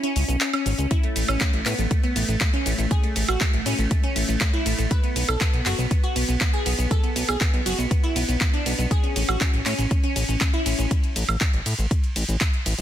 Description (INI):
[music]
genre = progressive house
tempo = 120 BPM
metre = 4/4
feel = straight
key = unclear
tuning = A4 = 440 Hz
[part]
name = glassy wavetable pluck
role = arpeggios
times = 0.0-10.9 s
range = A3 to B4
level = -26 LUFS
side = equal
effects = chorus, sidechain pumping, ping-pong delay
[part]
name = deep house drum kit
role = drums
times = 0.0-12.8 s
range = handclaps, hi-hat, ride cymbal, shaker, woodblock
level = -27 LUFS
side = equal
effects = none
[part]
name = fat analog bass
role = bass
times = 0.2-12.8 s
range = F#1 to A2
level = -24 LUFS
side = equal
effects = sidechain pumping
[part]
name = electronic kick drum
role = drums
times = 0.9-12.5 s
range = none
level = -22 LUFS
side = equal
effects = none
[sound]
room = light reverb, digital ambience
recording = dense, heavily limited modern master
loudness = -20 LUFS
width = side -11 dB against mid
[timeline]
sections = 0.0-12.8 A section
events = break 0.0-0.9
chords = 0.0 C#5; 0.9 N.C.; 4.9 B5; 8.9 A